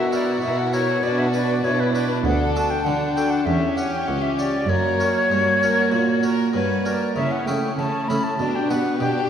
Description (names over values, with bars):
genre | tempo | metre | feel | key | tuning
classical, baroque-style concerto movement with solo episodes | 98 BPM | 4/4 | straight | unclear | A4 = 440 Hz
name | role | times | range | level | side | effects
bright concert flute | melody | 0.0-9.3 s | B4 to B5 | -23 LUFS | left 1 dB | none
rich chamber violin section | melody | 0.0-9.3 s | C#4 to B4 | -32 LUFS | left 5 dB | none
rich chamber violin section | second line | 0.0-9.3 s | C#4 to C#5 | -27 LUFS | left 2 dB | none
harpsichord | accompaniment | 0.0-9.3 s | C#2 to C#5 | -27 LUFS | equal | none
rich chamber viola section | accompaniment | 0.0-9.3 s | A3 to E4 | -26 LUFS | right 2 dB | none
warm chamber cello section | bass | 0.0-9.1 s | C#2 to D3 | -26 LUFS | right 2 dB | none
room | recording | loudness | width
wet concert hall reverb, RT60 1.9 s | none | -18 LUFS | side -8 dB against mid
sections
0.0-9.3 A section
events
none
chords
0.0 F#7/B; 1.0 Bm; 2.3 D; 3.5 C#dim/E; 4.7 F#; 7.2 A/C#; 8.4 G/B